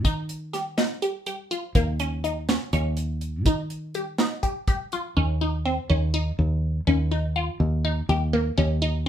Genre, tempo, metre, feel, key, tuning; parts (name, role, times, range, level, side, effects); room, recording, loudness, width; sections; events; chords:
progressive instrumental, band music in an uneven meter; 246 BPM (eighths); 7/8; straight; Eb mixolydian; A4 = 440 Hz
resonant blip pluck; arpeggios; 0.0-9.1 s; Bb3 to G4; -27 LUFS; left 1 dB; phaser
fingered electric bass; bass; 0.0-9.1 s; Eb2 to Eb3; -24 LUFS; equal
deep reggae drum kit; drums; 0.0-5.0 s; hi-hat, kick drum, snare drum; -25 LUFS; right 1 dB
light reverb; band playing live in one room; -23 LUFS; side -10 dB against mid
0.0-5.2 A section; 5.2-9.1 B section
0.0 Eb7; 8.6 N.C.